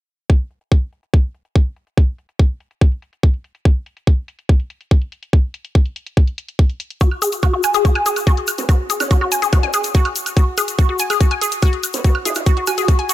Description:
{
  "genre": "psychedelic trance",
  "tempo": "143 BPM",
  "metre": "4/4",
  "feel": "straight",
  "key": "unclear",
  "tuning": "A4 = 440 Hz",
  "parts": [
    { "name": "electronic hi-hat and woodblock", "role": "drums", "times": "0.3-13.1 s", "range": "none", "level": "-26 LUFS", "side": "right 2 dB", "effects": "low-pass filter on hats, low-pass filter on perc" },
    { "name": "electronic kick drum", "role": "drums", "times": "0.3-13.0 s", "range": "none", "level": "-12 LUFS", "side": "equal", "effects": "none" },
    { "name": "woody wave-folded pluck", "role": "riff", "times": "7.0-13.1 s", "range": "F#4 to G#5", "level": "-19 LUFS", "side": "left 2 dB", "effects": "chorus, auto-pan, sidechain pumping, ping-pong delay" },
    { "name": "tube shaker", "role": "percussion", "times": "7.0-13.1 s", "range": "none", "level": "-26 LUFS", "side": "left 5 dB", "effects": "none" },
    { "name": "vowel-sweep wobble bass", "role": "second line", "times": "8.6-13.0 s", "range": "B3 to F#4", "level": "-27 LUFS", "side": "right 4 dB", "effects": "lush chorus, sidechain pumping, high-pass filter, digital delay" }
  ],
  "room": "digital ambience",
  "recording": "none",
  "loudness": "-15 LUFS",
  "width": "side -14 dB against mid",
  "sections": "0.3-13.1 A section",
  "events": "none",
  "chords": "none",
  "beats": "| 0.30 0.72 1.14 1.55 | 1.98 2.39 2.81 3.23 | 3.65 4.07 4.49 4.91 | 5.33 5.75 6.17 6.59 | 7.01 7.43 7.85 8.27 | 8.69 9.11 9.53 9.95 | 10.37 10.79 11.21 11.62 | 12.04 12.46 12.88"
}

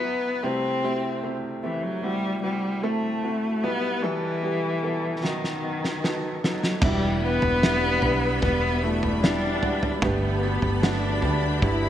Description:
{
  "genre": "pop ballad",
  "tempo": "75 BPM",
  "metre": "4/4",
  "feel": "straight",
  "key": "E minor",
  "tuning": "A4 = 440 Hz",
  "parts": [
    { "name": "dark cello", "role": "melody", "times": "0.0-9.8 s", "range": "D#3 to C4", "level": "-26 LUFS", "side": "left 2 dB", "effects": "none" },
    { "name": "clear upright piano", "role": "accompaniment", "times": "0.0-11.9 s", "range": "B1 to B4", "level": "-28 LUFS", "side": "right 2 dB", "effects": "wide subtle chorus" },
    { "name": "loose indie drum kit", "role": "drums", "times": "5.2-11.8 s", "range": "crash cymbal, kick drum, snare drum, toms", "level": "-27 LUFS", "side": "equal", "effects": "gated reverb" },
    { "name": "dark symphonic cello section", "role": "second line", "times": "6.8-11.9 s", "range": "B3 to E4", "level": "-30 LUFS", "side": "left 1 dB", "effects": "none" },
    { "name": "warm studio string section", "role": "sustained chords", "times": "6.8-11.9 s", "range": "G3 to B5", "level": "-33 LUFS", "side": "left 1 dB", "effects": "none" },
    { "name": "vintage muted fingered electric bass", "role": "bass", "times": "6.8-11.9 s", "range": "E1 to D2", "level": "-27 LUFS", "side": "equal", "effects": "none" }
  ],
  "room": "moderate plate reverb, RT60 2.1 s",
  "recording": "bright 1980s-style digital production",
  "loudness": "-22 LUFS",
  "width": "side -11 dB against mid",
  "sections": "0.0-6.8 A section; 6.8-11.9 B section",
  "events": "drum fill 5.2-6.8",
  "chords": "0.4 Am7/C; 3.6 Em/B; 5.2 B; 6.8 Em7; 10.0 Gadd9",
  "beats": "| 0.43 1.23 2.03 2.83 | 3.63 4.43 5.23 6.03 | 6.83 7.63 8.43 9.23 | 10.03 10.83 11.63"
}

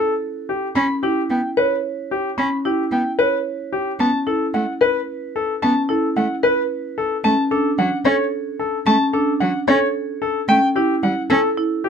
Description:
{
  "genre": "classical, minimalist pattern music",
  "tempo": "111 BPM",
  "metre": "3/4",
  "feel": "straight",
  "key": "E dorian",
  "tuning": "A4 = 437 Hz",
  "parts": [
    { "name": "clear concert grand piano", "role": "melody", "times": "0.0-11.9 s", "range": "G4 to B5", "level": "-20 LUFS", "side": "left 4 dB", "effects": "none" },
    { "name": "marimba with hard mallets", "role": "arpeggios", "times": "0.0-11.7 s", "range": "C#4 to C#5", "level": "-22 LUFS", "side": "right 3 dB", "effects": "none" },
    { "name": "rich cello", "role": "accompaniment", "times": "0.8-11.4 s", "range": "F#3 to C#4", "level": "-20 LUFS", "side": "right 2 dB", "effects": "none" }
  ],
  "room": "little or no reverb",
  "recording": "close, detailed microphones",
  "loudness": "-17 LUFS",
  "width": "side -7 dB against mid",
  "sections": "0.0-11.9 A section",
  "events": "none",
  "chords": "0.0 A7(no3); 0.8 Em; 4.0 F#m7 (rootless); 7.2 Dmaj7; 10.5 A7",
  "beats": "0.22 | 0.76 1.30 1.84 | 2.38 2.92 3.46 | 4.00 4.54 5.08 | 5.62 6.16 6.71 | 7.25 7.79 8.33 | 8.87 9.41 9.95 | 10.49 11.03 11.57"
}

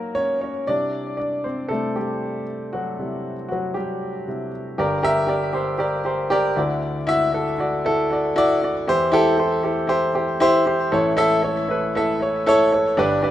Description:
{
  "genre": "pop",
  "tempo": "117 BPM",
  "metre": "4/4",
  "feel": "straight",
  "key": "unclear",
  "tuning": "A4 = 439 Hz",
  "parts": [
    { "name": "clear grand piano", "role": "solo", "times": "0.0-13.3 s", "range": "G1 to E5", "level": "-19 LUFS", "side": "equal", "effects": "ping-pong delay" }
  ],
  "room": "moderate studio reverb, RT60 0.6 s",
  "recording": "rough home demo mix",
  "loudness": "-19 LUFS",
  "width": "side -12 dB against mid",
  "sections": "0.0-4.8 A section; 4.8-13.0 B section",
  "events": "grand piano solo 0.0-4.8",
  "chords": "0.0 F#6; 0.7 Cadd9; 4.8 Gm; 6.6 Dadd9; 8.9 C/E; 10.9 A",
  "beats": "0.16 | 0.67 1.19 1.70 2.21 | 2.72 3.24 3.75 4.26 | 4.78 5.29 5.80 6.31 | 6.83 7.34 7.85 8.36 | 8.88 9.39 9.90 10.41 | 10.93 11.44 11.95 12.46 | 12.97"
}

